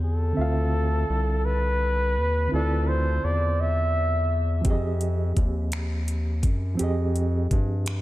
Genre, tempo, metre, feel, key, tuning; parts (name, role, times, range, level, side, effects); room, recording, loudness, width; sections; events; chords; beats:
slow six-eight R&B; 56 BPM (dotted quarters); 6/8; straight; D dorian; A4 = 438 Hz
breathy flugelhorn; melody; 0.0-4.4 s; A4 to E5; -27 LUFS; equal; tape echo
reed electric piano; accompaniment; 0.0-8.0 s; D3 to F5; -30 LUFS; right 2 dB; tremolo
round analog bass; bass; 0.0-8.0 s; C2 to G2; -24 LUFS; equal
smooth R&B drum kit; drums; 4.6-8.0 s; finger snaps, hi-hat, kick drum; -25 LUFS; equal
light reverb; -22 LUFS; side -16 dB against mid
0.0-8.0 A section
0.0 Dm9; 4.6 Fm9
| 0.36 1.43 | 2.51 3.58 | 4.65 5.72 | 6.79 7.86